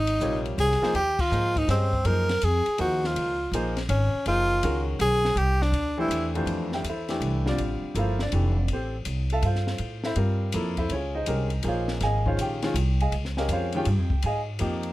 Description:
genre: modal jazz.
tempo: 163 BPM.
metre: 3/4.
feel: swing 66% on 8ths.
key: F major from 6.5 s.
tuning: A4 = 440 Hz.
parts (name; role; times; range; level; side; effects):
warm tenor saxophone; melody; 0.0-6.3 s; C4 to Bb4; -25 LUFS; equal; none.
upright bass; bass; 0.0-14.9 s; F1 to A2; -26 LUFS; equal; none.
compact cocktail drum kit; drums; 0.1-14.9 s; crash cymbal, hi-hat, kick drum, ride cymbal, snare drum; -35 LUFS; left 2 dB; none.
warm grand piano; accompaniment; 0.2-14.9 s; F2 to A5; -29 LUFS; equal; none.
room: little or no reverb.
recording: close, detailed microphones.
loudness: -23 LUFS.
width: side -16 dB against mid.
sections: 0.0-6.5 A section; 6.5-14.9 B section.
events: band accent 1.1.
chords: 0.0 Abmaj9; 2.1 Gbmaj9; 5.4 C; 6.5 Fmaj9; 10.9 Abmaj9.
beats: 0.21 0.58 | 0.94 1.31 1.68 | 2.05 2.42 2.79 | 3.16 3.53 3.90 | 4.26 4.63 5.00 | 5.37 5.74 6.11 | 6.48 6.85 7.22 | 7.59 7.96 8.32 | 8.69 9.06 9.43 | 9.80 10.17 10.54 | 10.91 11.28 11.65 | 12.01 12.38 12.75 | 13.12 13.49 13.86 | 14.22 14.59.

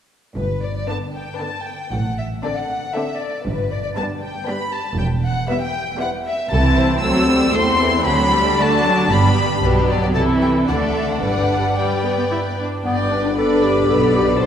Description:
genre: quick classical-period movement for symphony orchestra.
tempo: 116 BPM.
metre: 3/4.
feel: rubato.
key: G major.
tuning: A4 = 440 Hz.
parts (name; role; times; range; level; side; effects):
warm chamber violin section; melody; 0.4-14.5 s; B4 to E6; -22 LUFS; left 2 dB; none.
clear chamber double bass section; bass; 0.4-14.5 s; E1 to D2; -24 LUFS; right 2 dB; none.
rich studio cello section; bass; 0.4-14.5 s; C2 to D3; -23 LUFS; right 2 dB; none.
rich chamber violin section; second line; 0.9-14.5 s; C4 to D5; -24 LUFS; left 2 dB; none.
rich studio viola section; accompaniment; 0.9-14.5 s; D3 to E4; -22 LUFS; equal; none.
warm clarinet; second line; 12.8-14.5 s; B3 to A4; -18 LUFS; left 2 dB; none.
warm French horn section; sustained chords; 12.8-14.5 s; B3 to D4; -23 LUFS; left 4 dB; none.
room: wet concert hall reverb, RT60 2.2 s.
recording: recorded in a church or concert hall.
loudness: -16 LUFS.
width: side -8 dB against mid.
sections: 0.4-12.8 A section; 12.8-14.5 A section.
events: none.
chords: 0.4 G; 1.9 D5/A; 3.5 G; 5.0 Em; 6.5 Am/C; 8.1 D7; 9.1 G; 9.6 G/B; 10.1 Am/C; 10.7 D5; 11.2 G.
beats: | 0.36 0.88 1.40 | 1.92 2.43 2.94 | 3.46 3.97 4.48 | 4.99 5.49 6.00 | 6.51 7.02 7.53 | 8.05 8.57 9.10 | 9.62 10.15 10.68 | 11.22 11.76 12.31 | 12.85 13.38 13.90 | 14.41.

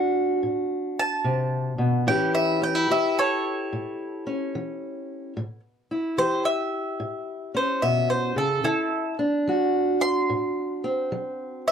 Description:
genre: acoustic country blues, solo or duo.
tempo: 73 BPM.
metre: 4/4.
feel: swing 65% on 8ths.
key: A mixolydian.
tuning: A4 = 436 Hz.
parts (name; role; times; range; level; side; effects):
mandolin; melody; 0.0-11.7 s; E4 to C6; -25 LUFS; equal; none.
fingerpicked steel-string acoustic guitar; accompaniment; 0.0-11.7 s; A2 to G4; -25 LUFS; equal; none.
room: moderate studio ambience, RT60 0.5 s.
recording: close, detailed microphones, lossy compression artefacts.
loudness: -22 LUFS.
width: side -7 dB against mid.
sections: 0.0-11.7 A section.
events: mandolin solo 0.0-11.7.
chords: 0.0 D7; 2.1 A7; 8.6 D7.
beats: 0.43 1.25 | 2.07 2.89 3.71 4.53 | 5.35 6.17 6.99 7.81 | 8.63 9.46 10.28 11.10.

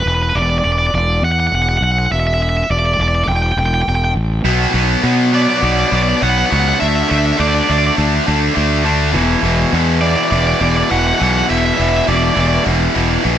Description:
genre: post-rock.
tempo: 102 BPM.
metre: 4/4.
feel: straight.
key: unclear.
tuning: A4 = 440 Hz.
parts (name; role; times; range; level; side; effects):
crunchy overdriven guitar; melody; 0.0-12.6 s; B4 to G5; -18 LUFS; right 1 dB; digital delay.
fuzz fingered electric bass; bass; 0.1-13.4 s; E1 to B2; -16 LUFS; equal; overdrive.
distorted electric guitar; riff; 4.4-13.4 s; E2 to D4; -15 LUFS; equal; overdrive.
room: light reverb, digital ambience.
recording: none.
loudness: -12 LUFS.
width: side -10 dB against mid.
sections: 0.0-4.5 A section; 4.5-13.4 B section.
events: build-up 0.0-4.5.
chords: 0.0 E7(no3); 4.5 Bm; 6.8 Dsus2; 9.1 E5.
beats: 0.34 0.93 1.52 | 2.10 2.69 3.28 3.87 | 4.45 5.04 5.62 6.21 | 6.80 7.38 7.97 8.56 | 9.14 9.73 10.32 10.90 | 11.49 12.07 12.66 13.24.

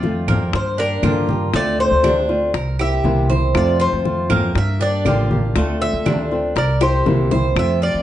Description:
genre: latin, Cuban son and guajira.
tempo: 119 BPM.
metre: 4/4.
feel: straight.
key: unclear.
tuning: A4 = 440 Hz.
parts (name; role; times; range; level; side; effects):
Cuban tres; melody; 0.0-8.0 s; Bb4 to E5; -22 LUFS; left 1 dB; plate reverb.
flamenco guitar; accompaniment; 0.0-8.0 s; C3 to G4; -23 LUFS; left 3 dB; none.
Cuban tres; arpeggios; 0.0-8.0 s; A3 to C5; -23 LUFS; right 4 dB; none.
upright bass; bass; 0.0-8.0 s; A1 to G2; -20 LUFS; right 1 dB; none.
bongos; percussion; 0.0-8.0 s; none; -27 LUFS; left 7 dB; none.
congas; percussion; 0.0-8.0 s; none; -23 LUFS; equal; none.
claves; percussion; 0.3-7.8 s; none; -31 LUFS; right 8 dB; none.
room: moderate large studio reverb, RT60 0.9 s.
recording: dark, warm production, nothing above 10.4 kHz.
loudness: -15 LUFS.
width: side -12 dB against mid.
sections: 0.0-8.0 A section.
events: Cuban tres solo 0.0-8.0; drum fill 6.8-7.6.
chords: 0.0 F; 0.5 Gm7; 1.5 Dm7; 2.5 C7; 3.5 F; 4.6 Gm7; 5.6 Dm7; 6.6 C7.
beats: 0.03 0.53 1.04 | 1.54 2.04 2.54 3.04 | 3.55 4.05 4.55 5.05 | 5.56 6.06 6.56 7.06 | 7.57.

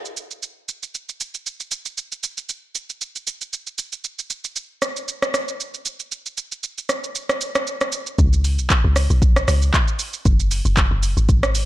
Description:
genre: amapiano.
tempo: 116 BPM.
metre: 4/4.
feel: swing 55% on 16ths.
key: unclear.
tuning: A4 = 440 Hz.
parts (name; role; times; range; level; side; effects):
afro-pop drum kit; drums; 0.1-11.7 s; handclaps, hi-hat, kick drum, rim click, shaker; -20 LUFS; equal; soft clipping on snare.
deep log drum bass; bass; 8.2-11.7 s; F#1 to C#2; -18 LUFS; equal; transformer saturation.
room: light reverb.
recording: blown-out, overdriven recording, overdrive.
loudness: -20 LUFS.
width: side -16 dB against mid.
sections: 0.0-8.2 A section; 8.2-11.7 B section.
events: drop 8.2-11.7.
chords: none.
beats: 0.43 0.94 1.46 | 1.98 2.50 3.01 3.53 | 4.05 4.56 5.08 5.60 | 6.12 6.63 7.15 7.67 | 8.19 8.70 9.22 9.74 | 10.25 10.77 11.29.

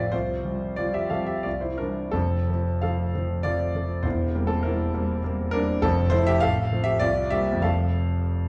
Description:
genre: classical, romantic character piece for solo piano.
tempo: 82-103 BPM.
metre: 3/4.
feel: rubato.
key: F major.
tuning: A4 = 440 Hz.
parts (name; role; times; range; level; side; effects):
warm concert grand piano; solo; 0.0-8.5 s; E1 to F5; -25 LUFS; equal; none.
room: wet large studio reverb, RT60 1.2 s.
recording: heard from further back in the room.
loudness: -25 LUFS.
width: mono.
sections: 0.0-8.5 A section.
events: none.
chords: 0.1 Csus4; 1.4 C; 2.1 F; 4.0 C7/E; 5.8 F; 6.4 F/A; 7.0 C7; 7.6 F.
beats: | 0.12 0.78 1.45 | 2.14 2.84 3.45 | 4.04 4.63 5.22 | 5.81 6.41 7.00 | 7.63 8.30.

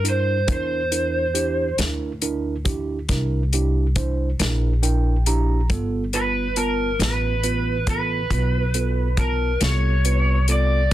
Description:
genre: slow blues.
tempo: 46 BPM (dotted quarters).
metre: 12/8.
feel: straight.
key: G mixolydian.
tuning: A4 = 440 Hz.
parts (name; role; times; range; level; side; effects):
lead guitar through a small cranked amp; melody; 0.0-10.9 s; Bb4 to D5; -23 LUFS; equal; overdrive, slapback echo.
tine electric piano; accompaniment; 0.0-10.9 s; B3 to Bb5; -27 LUFS; right 5 dB; none.
upright bass; bass; 0.0-10.9 s; G1 to G2; -22 LUFS; equal; none.
warm soul drum kit; drums; 0.0-10.9 s; hi-hat, kick drum, snare drum; -24 LUFS; left 1 dB; soft clipping on kick.
room: little or no reverb.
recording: dense, heavily limited modern master.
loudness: -19 LUFS.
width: side -13 dB against mid.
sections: 0.0-10.9 A section.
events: tine electric piano fill 4.4-5.7.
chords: 0.0 C7; 5.7 G7.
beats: | 0.49 1.79 3.09 4.39 | 5.70 7.00 8.31 9.61 | 10.92.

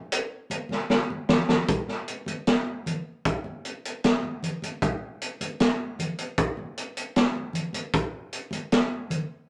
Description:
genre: rock.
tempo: 77 BPM.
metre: 4/4.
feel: straight.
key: none.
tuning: none.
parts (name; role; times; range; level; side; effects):
crunchy breakbeat drum kit; drums; 0.1-9.3 s; hi-hat, kick drum, snare drum; -28 LUFS; equal; none.
congas; percussion; 0.5-9.3 s; none; -36 LUFS; equal; none.
room: wet studio reverb, RT60 0.5 s.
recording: none.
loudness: -27 LUFS.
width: mono.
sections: 0.0-1.7 A section; 1.7-9.5 B section.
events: drum fill 0.7-1.7.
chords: none.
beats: 0.13 0.91 | 1.69 2.47 3.25 4.03 | 4.81 5.59 6.38 7.16 | 7.94 8.72.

